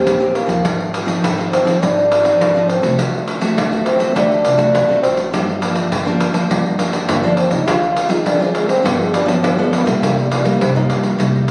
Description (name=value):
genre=samba and choro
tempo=102 BPM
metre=4/4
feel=straight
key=unclear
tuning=A4 = 440 Hz
part: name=growling trombone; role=second line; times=0.0-10.8 s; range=D3 to F4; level=-19 LUFS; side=equal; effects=none
part: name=nylon-string guitar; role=accompaniment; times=0.0-11.5 s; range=G2 to G4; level=-21 LUFS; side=equal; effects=none
part: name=upright bass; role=bass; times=0.1-11.5 s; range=G1 to Eb2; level=-27 LUFS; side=equal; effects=none
part: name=pandeiro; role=percussion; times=0.1-11.5 s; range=none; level=-22 LUFS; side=equal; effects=none
room=wet recital hall reverb, RT60 1.6 s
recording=recorded on a phone in the room, studio reverb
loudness=-16 LUFS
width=mono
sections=0.0-11.5 A section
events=trombone solo 0.0-11.5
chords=0.0 Eb7; 0.7 Ab6; 3.0 D7; 5.3 Gm7; 7.7 Dm7b5; 8.8 G7; 10.0 Cm7